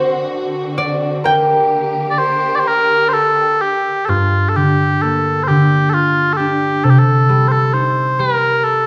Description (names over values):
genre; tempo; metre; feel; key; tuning
celtic folk, Celtic slow air; 42-45 BPM (dotted quarters); 6/8; rubato; G minor; A4 = 440 Hz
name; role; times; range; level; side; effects
concert harp; accompaniment; 0.0-8.9 s; G2 to G5; -17 LUFS; equal; none
muted studio string section; sustained chords; 0.0-4.1 s; D3 to G4; -25 LUFS; equal; none
mellow small bagpipes; melody; 2.1-8.9 s; F4 to D5; -17 LUFS; equal; none
room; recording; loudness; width
wet recital hall reverb, RT60 1.5 s; recorded in a church or concert hall; -15 LUFS; mono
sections
0.0-4.1 A section; 4.1-8.9 B section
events
harp solo 0.0-4.1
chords
0.0 D7; 1.2 Gm; 6.8 Cm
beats
| 1.23 2.65 | 4.08 5.49 | 6.84 8.19